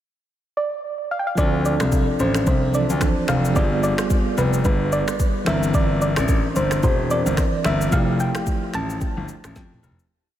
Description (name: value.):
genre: afrobeats.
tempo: 110 BPM.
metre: 4/4.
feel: swing 58% on 16ths.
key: D minor.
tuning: A4 = 441 Hz.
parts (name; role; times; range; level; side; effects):
soft round pluck; melody; 0.6-9.5 s; B4 to A5; -25 LUFS; right 1 dB; chorus, tape echo.
bell-like tine electric piano; accompaniment; 1.4-10.1 s; E3 to Bb4; -25 LUFS; right 2 dB; medium stereo tremolo.
clear concert grand piano; bass; 1.4-10.0 s; E1 to F2; -22 LUFS; left 2 dB; none.
afro-pop drum kit; drums; 1.4-10.1 s; finger snaps, kick drum, rim click, shaker, snare drum, toms; -23 LUFS; equal; none.
room: moderate huge ambient reverb, RT60 7.3 s.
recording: dreamy mix soaked in reverb.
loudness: -18 LUFS.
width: side -11 dB against mid.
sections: 0.0-1.4 pickup bar; 1.4-10.1 verse.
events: fade-out 7.9-10.1; drum fill 9.6-10.1.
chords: 0.0 N.C.; 1.4 Dm7; 3.6 G7b9; 5.5 C9/G; 7.9 Fmaj9.